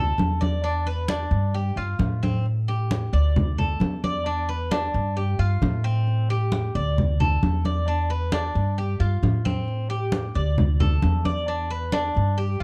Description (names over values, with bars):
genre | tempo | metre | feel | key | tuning
latin, Cuban son and guajira | 133 BPM | 4/4 | straight | unclear | A4 = 440 Hz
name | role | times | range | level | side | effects
Cuban tres | arpeggios | 0.0-12.6 s | C4 to D5 | -31 LUFS | equal | none
upright bass | bass | 0.0-12.6 s | D2 to A2 | -26 LUFS | equal | none
congas | percussion | 0.2-12.6 s | none | -28 LUFS | equal | none
room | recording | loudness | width
light reverb | dark, warm production | -24 LUFS | mono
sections
0.0-2.5 A section; 2.5-12.6 A section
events
none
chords
0.0 D5; 0.6 E5; 1.5 G7sus4; 2.5 Dsus4; 3.4 D5; 4.3 E5; 5.2 G7sus4; 6.1 Am7; 7.0 D5; 7.9 E5; 8.8 G7sus4; 9.7 Am7; 10.6 D5; 11.5 E5